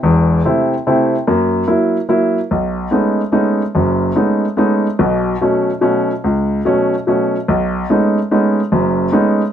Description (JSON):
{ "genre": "jazz", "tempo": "145 BPM", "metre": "3/4", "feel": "swing 66% on 8ths", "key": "B mixolydian", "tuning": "A4 = 440 Hz", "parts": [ { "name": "warm baby grand piano", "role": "solo", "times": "0.0-9.4 s", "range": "E1 to E4", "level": "-13 LUFS", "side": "equal", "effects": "none" } ], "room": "moderate studio reverb, RT60 0.6 s", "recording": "none", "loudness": "-13 LUFS", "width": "side -9 dB against mid", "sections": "0.0-2.5 A section; 2.5-9.5 B section", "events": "none", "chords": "0.0 Am; 1.3 F#7; 2.5 B13; 5.0 F#m/B; 7.5 B13", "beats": "| 0.02 0.43 0.85 | 1.26 1.67 2.09 | 2.50 2.91 3.33 | 3.74 4.16 4.57 | 4.98 5.40 5.81 | 6.22 6.64 7.05 | 7.46 7.88 8.29 | 8.71 9.12" }